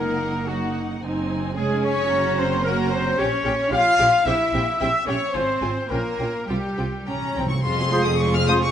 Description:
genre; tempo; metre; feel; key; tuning
quick classical-period movement for symphony orchestra; 110 BPM; 2/4; rubato; F minor from 3.2 s; A4 = 443 Hz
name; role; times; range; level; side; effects
rich chamber violin section; melody; 0.0-8.7 s; Gb5 to F6; -30 LUFS; left 3 dB; none
clear chamber violin section; second line; 0.0-8.7 s; F4 to F5; -30 LUFS; left 4 dB; none
rich chamber viola section; accompaniment; 0.0-8.7 s; Ab3 to Ab4; -28 LUFS; right 1 dB; none
clear trumpet section; stabs; 0.0-7.1 s; Gb4 to F5; -22 LUFS; left 1 dB; none
clear chamber cello section; bass; 0.0-8.7 s; F2 to F4; -28 LUFS; right 1 dB; none
rich chamber double bass section; bass; 0.0-8.7 s; F1 to C2; -28 LUFS; right 2 dB; none
timpani; percussion; 7.1-7.6 s; C3; -28 LUFS; right 1 dB; none
dark French horn section; sustained chords; 7.6-8.7 s; C4 to Ab4; -27 LUFS; left 5 dB; none
bright large flute ensemble; second line; 7.9-8.6 s; C6; -28 LUFS; right 3 dB; none
warm clarinet; second line; 7.9-8.6 s; Ab4; -29 LUFS; left 1 dB; none
warm oboe; second line; 7.9-8.6 s; C5; -30 LUFS; left 1 dB; none
warm bassoon; accompaniment; 7.9-8.6 s; F3; -29 LUFS; right 4 dB; none
room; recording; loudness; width
wet recital hall reverb, RT60 1.8 s; nothing above 11.0 kHz; -19 LUFS; side -9 dB against mid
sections
0.0-7.6 A section; 7.6-8.7 B section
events
timpani fill 7.1-7.6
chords
0.0 Ebm/Gb; 1.0 Ab7/Gb; 1.6 Db/F; 2.1 Gb; 3.2 Gdim/Bb; 4.3 C7/Bb; 5.3 Fm; 5.9 Gm7b5/Bb (rootless); 6.5 Csus4; 7.1 C5; 7.6 Fm

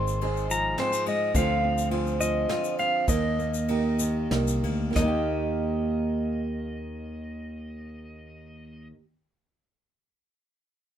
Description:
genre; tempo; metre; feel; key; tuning
acoustic folk duo or small band; 91-106 BPM; 3/4; straight; Eb major; A4 = 440 Hz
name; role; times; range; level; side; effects
pedal steel guitar; melody; 0.0-8.9 s; C5 to C6; -30 LUFS; equal; none
nylon-string guitar; accompaniment; 0.0-9.0 s; Eb2 to G4; -31 LUFS; left 1 dB; none
picked acoustic archtop guitar; arpeggios; 0.0-9.0 s; F3 to Ab4; -33 LUFS; right 8 dB; none
fingered electric bass; bass; 0.0-8.9 s; Ab1 to Eb2; -30 LUFS; equal; none
egg shaker; percussion; 0.1-5.3 s; none; -36 LUFS; left 8 dB; none
soft brush drum kit; drums; 0.2-5.1 s; kick drum, ride cymbal, snare drum; -34 LUFS; equal; none
room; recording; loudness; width
moderate small room reverb, RT60 0.5 s; minimal, uncompressed stereo recording; -24 LUFS; side -10 dB against mid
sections
0.0-5.0 A section; 5.0-8.9 B section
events
slowing down 1.3-5.0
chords
0.0 Fm7/Ab; 1.3 Dm7b5; 3.1 Eb

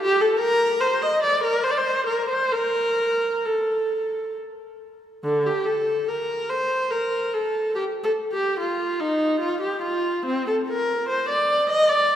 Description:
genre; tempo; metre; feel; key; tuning
classical, baroque-style suite movement for unaccompanied viola; 63-76 BPM; 3/4; rubato; Bb major; A4 = 440 Hz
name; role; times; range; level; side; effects
rich viola; solo; 0.0-12.2 s; D3 to Eb5; -20 LUFS; equal; none
room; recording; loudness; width
wet church reverb, RT60 3.2 s; heard from further back in the room; -21 LUFS; side -10 dB against mid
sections
0.0-5.2 A section; 5.2-12.2 B section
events
none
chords
none

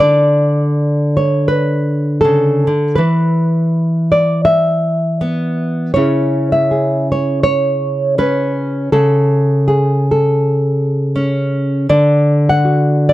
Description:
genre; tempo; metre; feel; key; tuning
folk, solo fingerstyle acoustic guitar; 81 BPM; 4/4; swing 57% on 8ths; unclear; A4 = 440 Hz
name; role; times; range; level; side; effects
nylon-string guitar; solo; 0.0-13.1 s; C#3 to F#5; -12 LUFS; equal; none
room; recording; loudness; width
light reverb; dry, close 1970s-style studio recording; -12 LUFS; side -15 dB against mid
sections
0.0-13.1 A section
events
none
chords
0.0 D5; 3.0 E5; 6.0 C#m; 8.9 N.C.; 11.9 D

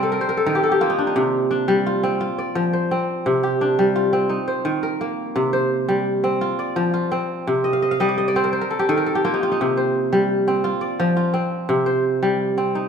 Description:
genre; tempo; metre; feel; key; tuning
west african traditional; 114 BPM (dotted quarters); 12/8; straight; C dorian; A4 = 440 Hz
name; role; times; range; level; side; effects
kora; solo; 0.0-12.9 s; C3 to G5; -18 LUFS; equal; none
room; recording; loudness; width
moderate recital hall reverb, RT60 1.6 s; minimal, uncompressed stereo recording; -18 LUFS; side -7 dB against mid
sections
0.0-5.4 A section; 5.4-12.9 B section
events
kora fill 0.0-1.2, 7.7-9.6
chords
0.1 Eb5; 1.2 C5; 2.2 F5; 3.3 C5; 4.3 Eb5; 5.4 C5; 6.4 F5; 7.5 C5; 8.5 Eb5; 9.6 C5; 10.6 F5; 11.7 C5

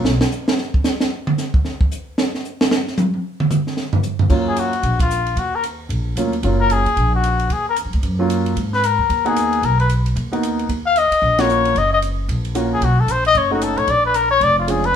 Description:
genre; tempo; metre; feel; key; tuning
jazz, small-group swing and bop; 226 BPM; 4/4; swing 61% on 8ths; Eb minor; A4 = 440 Hz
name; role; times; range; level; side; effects
warm baby grand piano; accompaniment; 0.0, 4.3-14.8 s; Gb3 to Gb4; -21 LUFS; right 1 dB; none
upright bass; bass; 0.0-0.2, 4.3-14.9 s; F1 to Ab2; -21 LUFS; equal; none
compact cocktail drum kit; drums; 0.0-14.9 s; crash cymbal, hi-hat, kick drum, ride cymbal, snare drum, toms; -21 LUFS; right 1 dB; none
trumpet with cup mute; melody; 4.5-15.0 s; F4 to F5; -17 LUFS; left 4 dB; none
room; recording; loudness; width
moderate studio reverb, RT60 0.8 s; band playing live in one room; -16 LUFS; side -8 dB against mid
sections
0.0-4.3 A section; 4.3-15.0 B section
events
drum solo 0.0-4.3; band accent 5.0, 11.4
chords
0.0 N.C.; 4.3 Ebm7; 8.6 Abm7; 10.7 Ebm7; 12.8 B7; 13.9 Bb7#9

